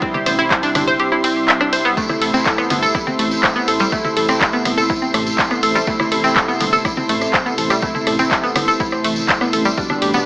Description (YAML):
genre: melodic techno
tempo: 123 BPM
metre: 4/4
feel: straight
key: A minor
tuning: A4 = 439 Hz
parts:
  - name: lush unison pad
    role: sustained chords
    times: 0.0-10.3 s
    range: G4 to C6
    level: -24 LUFS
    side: equal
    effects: chorus, sidechain pumping
  - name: analog pluck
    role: arpeggios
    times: 0.0-10.2 s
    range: G3 to E5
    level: -18 LUFS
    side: equal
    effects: chorus, sidechain pumping, digital delay
  - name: analog synth brass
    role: stabs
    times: 0.0-10.3 s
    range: B2 to E4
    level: -21 LUFS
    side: right 1 dB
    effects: chorus, sidechain pumping, digital delay
  - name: deep house drum kit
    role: drums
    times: 0.0-10.1 s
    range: congas, handclaps, hi-hat, ride cymbal, rim click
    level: -20 LUFS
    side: equal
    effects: none
  - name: electronic kick drum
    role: drums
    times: 0.0-9.9 s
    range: none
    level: -25 LUFS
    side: equal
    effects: none
  - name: dark detuned saw bass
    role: bass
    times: 0.3-10.2 s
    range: G1 to A1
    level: -27 LUFS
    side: equal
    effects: sidechain pumping
  - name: tambourine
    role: percussion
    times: 2.0-10.2 s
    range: none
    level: -28 LUFS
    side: equal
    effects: none
room: moderate digital room reverb, RT60 1.3 s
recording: AM radio sound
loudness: -14 LUFS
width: side -23 dB against mid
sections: 0.0-10.3 A section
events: kick drops out 1.0-2.0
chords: 0.0 C; 2.0 Am